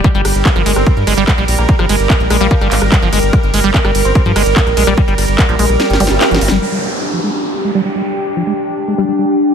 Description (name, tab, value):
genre	psychedelic trance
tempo	146 BPM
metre	4/4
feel	straight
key	G phrygian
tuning	A4 = 440 Hz
part	evolving wavetable pad	sustained chords	0.0-9.5 s	G3 to Bb4	-17 LUFS	right 2 dB	chorus, built-in reverb, sidechain pumping
part	liquid acid bass	riff	0.0-9.3 s	F3 to G4	-18 LUFS	moving between left 7 dB and right 5 dB	chorus, auto-pan, sidechain pumping, ping-pong delay
part	electronic kick drum	drums	0.0-5.5 s	none	-12 LUFS	equal	overdrive
part	techno drum kit	drums	0.0-6.6 s	handclaps, hi-hat, ride cymbal, rim click, snare drum	-18 LUFS	equal	overdrive
part	round analog bass	bass	0.1-6.6 s	G1 to G2	-16 LUFS	equal	none
part	metallic wobble bass	second line	0.8-6.5 s	F3 to C4	-26 LUFS	left 3 dB	lush chorus, sidechain pumping, high-pass filter, ping-pong delay
part	zap and downlifter	sound effects	6.0-9.5 s	none	-22 LUFS	equal	none
part	airy breathy pad	texture	6.9-9.5 s	D4 to G5	-20 LUFS	equal	chorus, sidechain pumping
room	light reverb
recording	none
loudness	-10 LUFS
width	side -7 dB against mid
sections	0.0-6.6 A section; 6.6-9.5 B section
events	drop 0.0-6.6; kick drops out 5.8-6.6; drum fill 5.8-6.6; filter sweep on acid bass 6.6-9.5; filter sweep on ambient pad 6.6-9.5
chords	0.0 G5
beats	| 0.04 0.46 0.87 1.28 | 1.69 2.10 2.51 2.92 | 3.33 3.74 4.15 4.56 | 4.97 5.39 5.80 6.21 | 6.62 7.03 7.44 7.85 | 8.26 8.67 9.09 9.50